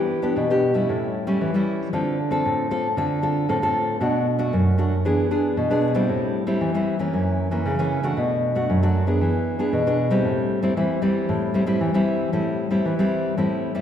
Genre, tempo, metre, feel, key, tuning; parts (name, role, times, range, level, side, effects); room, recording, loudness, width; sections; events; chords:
samba; 115 BPM; 4/4; straight; A minor; A4 = 440 Hz
nylon-string guitar; solo; 0.0-13.8 s; F#2 to A4; -20 LUFS; equal
wet scoring stage reverb, RT60 1.7 s; recorded in a church or concert hall; -20 LUFS; side -9 dB against mid
0.0-13.8 A section
0.0 Em7; 0.9 A7; 1.9 Dm7; 4.0 Bm7; 5.1 E7; 6.1 Am7; 7.1 F#7; 8.2 Bm7; 9.2 E7; 10.2 Am7